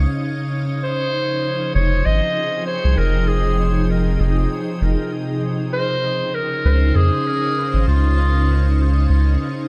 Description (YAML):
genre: ambient dub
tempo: 98 BPM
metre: 4/4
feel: swing 56% on 16ths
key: F minor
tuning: A4 = 440 Hz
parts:
  - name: soft additive organ-like pad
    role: sustained chords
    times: 0.0-9.7 s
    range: C3 to G5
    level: -25 LUFS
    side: equal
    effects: ensemble chorus, built-in reverb
  - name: soft dub sub bass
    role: bass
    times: 0.0-9.4 s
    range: F1 to F2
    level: -18 LUFS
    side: equal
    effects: none
  - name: bright clarinet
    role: melody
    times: 0.8-9.1 s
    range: F4 to Eb5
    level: -25 LUFS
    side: equal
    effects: dub echo
room: light reverb, studio reverb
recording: none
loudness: -19 LUFS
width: mono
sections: 0.0-9.7 A section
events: none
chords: 0.0 Db; 0.8 Fm7; 5.7 Dbmaj7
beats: 0.22 | 0.83 1.45 2.06 2.67 | 3.28 3.90 4.51 5.12 | 5.73 6.34 6.96 7.57 | 8.18 8.79 9.41